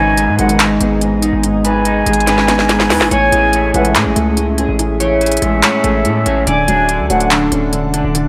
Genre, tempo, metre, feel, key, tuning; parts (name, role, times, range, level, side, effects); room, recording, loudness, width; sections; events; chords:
hip hop, trap; 143 BPM; 4/4; half-time; A4 = 439 Hz
silver concert flute; second line; 0.0-7.3 s; E5 to G#5; -20 LUFS; equal; digital delay
felt-muted upright piano; accompaniment; 0.0-8.3 s; G#2 to D#4; -20 LUFS; equal
glassy FM pad; sustained chords; 0.3-8.3 s; D3 to G#5; -26 LUFS; equal; ensemble chorus, built-in reverb
electric guitar at the edge of break-up; arpeggios; 0.0-8.3 s; D3 to D5; -21 LUFS; equal; lush chorus, digital delay
hard-hitting 808-style bass; bass; 0.0-8.3 s; D1 to A2; -22 LUFS; equal
trap drum kit; drums; 0.2-8.2 s; handclaps, hi-hat, snare drum; -19 LUFS; equal
dark brass ensemble; stabs; 0.4-0.7, 3.7-4.0, 7.1-7.4 s; B1 to F#3; -21 LUFS; equal
light reverb, digital ambience; -13 LUFS; mono
0.0-8.3 A section
drum fill 2.3-3.1
0.0 G#m; 3.1 Amaj7; 6.5 Dmaj7